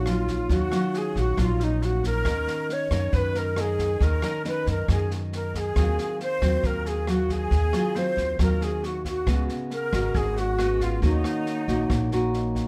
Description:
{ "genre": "bossa nova", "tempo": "137 BPM", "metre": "4/4", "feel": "straight", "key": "Eb minor", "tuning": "A4 = 439 Hz", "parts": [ { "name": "wooden-headed alto flute", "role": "melody", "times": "0.0-12.3 s", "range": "Eb4 to C#5", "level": "-31 LUFS", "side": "equal", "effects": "plate reverb" }, { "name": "breathy bright flute section", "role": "second line", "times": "0.0-12.3 s", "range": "Eb4 to C#5", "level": "-38 LUFS", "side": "equal", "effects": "none" }, { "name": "nylon-string guitar", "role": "accompaniment", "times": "0.0-12.7 s", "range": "Ab2 to A#4", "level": "-32 LUFS", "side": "equal", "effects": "none" }, { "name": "vibraphone with medium hard mallets", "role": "accompaniment", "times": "0.0-12.7 s", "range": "Cb4 to Bb5", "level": "-40 LUFS", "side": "equal", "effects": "none" }, { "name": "upright bass", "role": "bass", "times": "0.0-12.7 s", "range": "Ab1 to F#2", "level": "-28 LUFS", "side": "equal", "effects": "none" }, { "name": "open jazz drum kit", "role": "drums", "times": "0.1-12.6 s", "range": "kick drum, rim click, snare drum", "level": "-34 LUFS", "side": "equal", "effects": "none" } ], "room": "light reverb", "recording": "dark, warm production", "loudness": "-25 LUFS", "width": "mono", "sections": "0.0-12.7 A section", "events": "vibraphone fill 11.9-12.7", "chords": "0.0 Ebm9; 2.3 Bmaj13/D#; 5.8 Ab13/Eb; 9.3 Db7sus4; 11.0 Ebm7" }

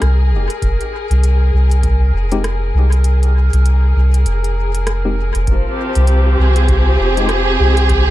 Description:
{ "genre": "ambient dub", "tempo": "99 BPM", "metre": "4/4", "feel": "swing 60% on 16ths", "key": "F minor", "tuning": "A4 = 439 Hz", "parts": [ { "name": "warm studio string section", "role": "sustained chords", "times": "0.0-8.1 s", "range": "F3 to Ab4", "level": "-20 LUFS", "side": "equal", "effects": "none" }, { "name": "soft dub sub bass", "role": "bass", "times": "0.0-8.1 s", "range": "F1 to C2", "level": "-13 LUFS", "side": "equal", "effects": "none" }, { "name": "organic electronic drum kit", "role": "drums", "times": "0.0-8.0 s", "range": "hi-hat, rim click", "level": "-28 LUFS", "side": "equal", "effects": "overdrive, dub echo" }, { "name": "drifting glass-harmonics texture", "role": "texture", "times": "0.0-8.1 s", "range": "Bb4 to C5", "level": "-27 LUFS", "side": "equal", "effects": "chorus, built-in reverb" }, { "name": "electronic kick drum", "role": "drums", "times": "0.6-8.0 s", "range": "none", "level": "-19 LUFS", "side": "equal", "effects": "none" }, { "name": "tine electric piano", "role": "stabs", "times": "2.3-7.3 s", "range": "Ab3 to G4", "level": "-25 LUFS", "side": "left 4 dB", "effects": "medium tremolo, dub echo" } ], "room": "little or no reverb", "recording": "echo-heavy mix", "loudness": "-12 LUFS", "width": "side -15 dB against mid", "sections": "0.0-5.5 A section; 5.5-8.1 B section", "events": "kick drops out 3.0-5.5", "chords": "0.0 Fm; 5.5 Fmadd9" }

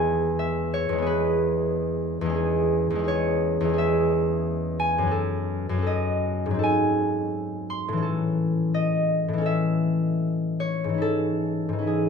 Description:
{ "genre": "classical, solo harp piece", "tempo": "71-94 BPM", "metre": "4/4", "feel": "rubato", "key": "C# minor", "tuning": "A4 = 440 Hz", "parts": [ { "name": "concert harp", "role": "solo", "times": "0.0-12.1 s", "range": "E2 to B#5", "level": "-22 LUFS", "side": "left 1 dB", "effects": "none" } ], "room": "light reverb", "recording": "close, detailed microphones", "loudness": "-22 LUFS", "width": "side -6 dB against mid", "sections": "0.0-12.1 A section", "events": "none", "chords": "0.0 E; 2.4 C#m/E; 5.1 D#m7b5/F#; 6.6 G#7b9; 8.0 A; 11.0 C#m/G#" }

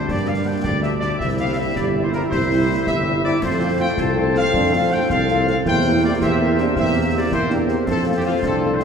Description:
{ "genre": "military-style march for wind band", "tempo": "108 BPM (dotted quarters)", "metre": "6/8", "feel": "straight", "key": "F major", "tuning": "A4 = 440 Hz", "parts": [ { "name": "warm trumpet section", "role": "melody", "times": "0.0-8.8 s", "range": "F4 to A5", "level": "-23 LUFS", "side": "left 2 dB", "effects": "none" }, { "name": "warm euphonium", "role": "second line", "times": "0.0-8.8 s", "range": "Bb3 to G4", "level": "-25 LUFS", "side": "right 3 dB", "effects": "none" }, { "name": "warm woodwind section", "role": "second line", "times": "0.0-8.8 s", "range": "G4 to E5", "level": "-27 LUFS", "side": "left 3 dB", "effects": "none" }, { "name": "bright trombone section", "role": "sustained chords", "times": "0.0-8.8 s", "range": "G3 to E4", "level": "-26 LUFS", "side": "right 1 dB", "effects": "none" }, { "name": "dark tuba", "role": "bass", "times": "0.1-8.8 s", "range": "G1 to G2", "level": "-22 LUFS", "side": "right 2 dB", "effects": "none" }, { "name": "concert snare drum, concert bass drum and clash cymbals", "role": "drums", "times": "0.1-8.8 s", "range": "none", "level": "-29 LUFS", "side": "left 1 dB", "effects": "none" }, { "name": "mellow French horn section", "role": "accompaniment", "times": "0.3-8.8 s", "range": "G3 to G4", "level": "-28 LUFS", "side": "left 3 dB", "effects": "none" } ], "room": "wet church reverb, RT60 3.9 s", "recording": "recorded in a church or concert hall", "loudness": "-17 LUFS", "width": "side -6 dB against mid", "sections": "0.0-8.8 A section", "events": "none", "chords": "0.0 Gm; 1.2 C; 3.4 F; 5.6 C7/E; 7.9 F" }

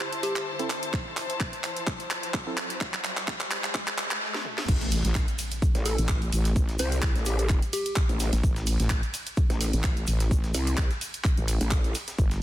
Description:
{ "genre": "bass house", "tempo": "128 BPM", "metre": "4/4", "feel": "swing 55% on 16ths", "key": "A minor", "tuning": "A4 = 443 Hz", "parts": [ { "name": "garage drum kit", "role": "drums", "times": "0.0-12.4 s", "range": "crash cymbal, handclaps, hi-hat, ride cymbal, snare drum, toms", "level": "-31 LUFS", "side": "right 1 dB", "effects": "soft clipping on snare, studio reverb" }, { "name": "riser and impact", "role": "sound effects", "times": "0.0-6.6 s", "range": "none", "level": "-39 LUFS", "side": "equal", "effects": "none" }, { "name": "rich studio string section", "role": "texture", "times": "0.0-4.2, 12.2-12.4 s", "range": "D4 to A5", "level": "-35 LUFS", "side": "left 2 dB", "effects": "sidechain pumping" }, { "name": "soft struck synth lead", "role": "melody", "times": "0.2-0.6, 5.9-8.1 s", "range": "G4 to C5", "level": "-33 LUFS", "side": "equal", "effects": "chorus, dub echo" }, { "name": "percussive organ stab", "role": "stabs", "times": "0.6-2.6 s", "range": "C4 to A4", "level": "-36 LUFS", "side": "right 3 dB", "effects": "chorus, sidechain pumping, dub echo" }, { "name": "electronic kick drum", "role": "drums", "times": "0.9-12.3 s", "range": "none", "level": "-25 LUFS", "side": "equal", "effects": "studio reverb" }, { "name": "wobble bass", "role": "bass", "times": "4.7-12.4 s", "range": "G1 to A1", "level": "-26 LUFS", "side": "equal", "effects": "chorus, tube saturation, sidechain pumping" }, { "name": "breakbeat sampler-style drum kit", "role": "drums", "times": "4.7-12.4 s", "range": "hi-hat, snare drum", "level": "-43 LUFS", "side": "right 1 dB", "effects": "none" }, { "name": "tube shaker", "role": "percussion", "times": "4.7-12.4 s", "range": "none", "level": "-40 LUFS", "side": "left 2 dB", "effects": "none" }, { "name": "growl bass", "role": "bass", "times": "5.8-11.9 s", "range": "A1 to C2", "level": "-27 LUFS", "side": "equal", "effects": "chorus, overdrive, sidechain pumping" } ], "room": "light reverb, digital ambience", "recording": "dense, heavily limited modern master, high-pass filter", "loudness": "-24 LUFS", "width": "side -13 dB against mid", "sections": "0.0-4.7 A section; 4.7-12.4 B section", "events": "build-up 0.0-4.7; drum fill 0.0-4.2, 4.3-4.7; riser 0.0-4.7; drop 4.7-12.4; impact 4.7-6.6", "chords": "0.0 Am; 4.7 N.C." }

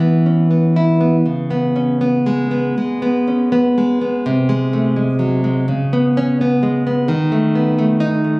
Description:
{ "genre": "romantic piece for solo classical guitar", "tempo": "78-87 BPM", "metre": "4/4", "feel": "rubato", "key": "unclear", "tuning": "A4 = 437 Hz", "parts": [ { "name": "nylon-string guitar", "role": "solo", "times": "0.0-8.4 s", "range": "B#2 to E4", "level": "-13 LUFS", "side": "equal", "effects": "none" } ], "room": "moderate recital hall reverb, RT60 1.5 s", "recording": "recorded on a phone in the room, club reverb, faint mains hum", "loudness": "-14 LUFS", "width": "side -25 dB against mid", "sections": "0.0-8.4 A section", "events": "none", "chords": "0.0 E5; 1.3 C#5; 4.2 G#7/B#; 5.7 C#5; 7.1 B7/D#" }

